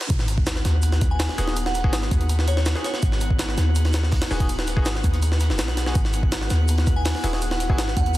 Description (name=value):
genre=drum and bass, jungle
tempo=164 BPM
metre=4/4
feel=straight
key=G# minor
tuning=A4 = 439 Hz
part: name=jungle sampler-style drum kit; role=drums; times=0.0-8.2 s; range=hi-hat, kick drum, snare drum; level=-23 LUFS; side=equal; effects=high-pass filter on kick, high-pass filter on hats, high-pass filter on snare, high-pass filter on room
part: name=riser and sub drop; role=sound effects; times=0.0-1.6 s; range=none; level=-32 LUFS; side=equal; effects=none
part: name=ethereal airy pad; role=sustained chords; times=0.3-8.2 s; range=B3 to B4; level=-34 LUFS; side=left 1 dB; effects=ensemble chorus, built-in reverb
part: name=warm 808-style bass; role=bass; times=0.1-8.2 s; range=D#1 to D#2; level=-22 LUFS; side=equal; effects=none
part: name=crunchy breakbeat drum kit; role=drums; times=0.1-8.2 s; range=hi-hat, shaker, snare drum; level=-38 LUFS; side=right 1 dB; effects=none
part: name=drifting glass-harmonics texture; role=texture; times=0.4-8.2 s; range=F#5 to F#6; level=-36 LUFS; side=left 1 dB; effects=chorus, built-in reverb
part: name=glassy synth bell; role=melody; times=1.1-3.0, 7.0-8.2 s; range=C#5 to G#5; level=-32 LUFS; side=right 2 dB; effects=chorus, phaser, dub echo
part: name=bright grand piano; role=stabs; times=1.4-7.8 s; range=B3 to G#4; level=-33 LUFS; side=left 2 dB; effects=dub echo
room=small room ambience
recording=dense, heavily limited modern master, high-pass filter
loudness=-19 LUFS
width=side -16 dB against mid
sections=0.1-8.2 A section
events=drop 0.1-8.2; impact 0.1-1.6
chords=0.1 G#m7; 6.0 Eadd9